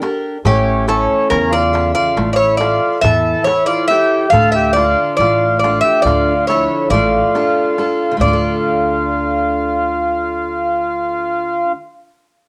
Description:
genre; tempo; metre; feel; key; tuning
greek folk, Greek bouzouki band; 139 BPM (eighths); 9/8; straight; D harmonic minor; A4 = 435 Hz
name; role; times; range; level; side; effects
picked steel-string acoustic guitar; accompaniment; 0.0-11.9 s; C#3 to E5; -24 LUFS; equal; cassette tape, plate reverb
darbuka; percussion; 0.0-8.6 s; none; -24 LUFS; equal; none
upright bass; bass; 0.4-11.7 s; A1 to E2; -24 LUFS; equal; none
Greek bouzouki; melody; 0.5-11.7 s; G4 to F5; -18 LUFS; equal; cassette tape
mellow accordion; second line; 0.5-11.7 s; C#4 to A4; -20 LUFS; equal; cassette tape, plate reverb
room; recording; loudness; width
moderate small room reverb, RT60 0.5 s; home recording on cassette; -15 LUFS; mono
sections
0.0-8.2 A section; 8.2-12.1 B section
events
none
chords
0.5 A; 4.3 Dm

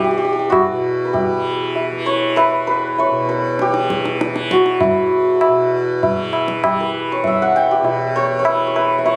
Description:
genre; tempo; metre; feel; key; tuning
indian classical, Hindustani; 98 BPM; 5/4; straight; E raga shivaranjani; A4 = 439 Hz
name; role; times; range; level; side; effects
santur; melody; 0.0-9.2 s; E4 to G5; -19 LUFS; equal; none
tanpura; drone; 0.0-9.2 s; E2 to E3; -26 LUFS; equal; none
tabla; percussion; 0.5-9.2 s; none; -22 LUFS; equal; none
room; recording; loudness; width
moderate small room reverb, RT60 0.6 s; recorded on a phone in the room, club reverb; -17 LUFS; mono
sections
0.0-9.2 A section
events
speeding up 0.0-9.2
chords
none

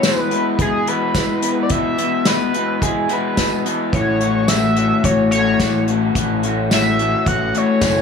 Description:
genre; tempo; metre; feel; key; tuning
indie rock; 108 BPM; 4/4; straight; A major; A4 = 440 Hz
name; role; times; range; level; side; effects
sync lead; melody; 0.0-8.0 s; G#4 to F#5; -21 LUFS; equal; chorus
electric guitar through a small old amp; riff; 0.0-8.0 s; E2 to F#4; -18 LUFS; left 3 dB; wide subtle chorus
unplugged drum kit; drums; 0.0-8.0 s; hi-hat, kick drum, snare drum, tambourine; -20 LUFS; equal; none
growling picked electric bass; bass; 3.9-8.0 s; F#1 to A1; -22 LUFS; equal; overdrive
room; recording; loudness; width
little or no reverb; small room ambience; -15 LUFS; side -6 dB against mid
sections
0.0-8.0 A section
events
none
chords
0.0 E; 3.9 A6

